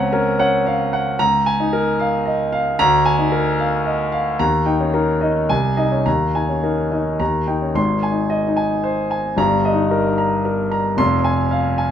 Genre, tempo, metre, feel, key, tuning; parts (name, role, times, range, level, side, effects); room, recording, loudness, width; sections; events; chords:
classical, virtuoso piano study; 112 BPM; 3/4; rubato; Ab major; A4 = 440 Hz
warm concert grand piano; solo; 0.0-11.9 s; F1 to C6; -16 LUFS; equal
moderate large studio reverb, RT60 0.9 s; -16 LUFS; side -9 dB against mid
0.0-7.8 A section; 7.8-11.9 B section
0.0 Gb/Db; 1.2 Bbm7/Db; 2.8 Bb7/D; 4.4 Eb; 5.5 Ab/C; 6.1 Ebsus4; 7.2 Eb; 7.8 Ab; 9.4 Eb/G; 11.0 Fm